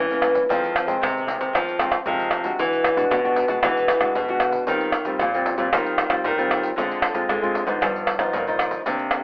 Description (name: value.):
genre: samba and choro.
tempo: 115 BPM.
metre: 4/4.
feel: straight.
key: unclear.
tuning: A4 = 441 Hz.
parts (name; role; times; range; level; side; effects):
nylon-string guitar; accompaniment; 0.0-9.2 s; F2 to F#4; -24 LUFS; left 1 dB; none.
nylon-string guitar; bass; 0.0-9.2 s; G2 to Ab3; -23 LUFS; equal; none.
egg shaker, pandeiro, tamborim and surdo; percussion; 0.1-9.2 s; none; -23 LUFS; right 1 dB; none.
room: moderate studio reverb, RT60 0.6 s.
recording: telephone sound.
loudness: -19 LUFS.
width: side -25 dB against mid.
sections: 0.0-9.2 A section.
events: none.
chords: 0.0 C7b9 (rootless); 0.5 Fm7; 2.6 E9; 4.7 Eb69; 6.8 Dm7b5; 7.8 G7alt.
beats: | 0.50 1.02 1.55 2.07 | 2.59 3.12 3.64 4.16 | 4.68 5.21 5.73 6.25 | 6.77 7.29 7.82 8.34 | 8.86.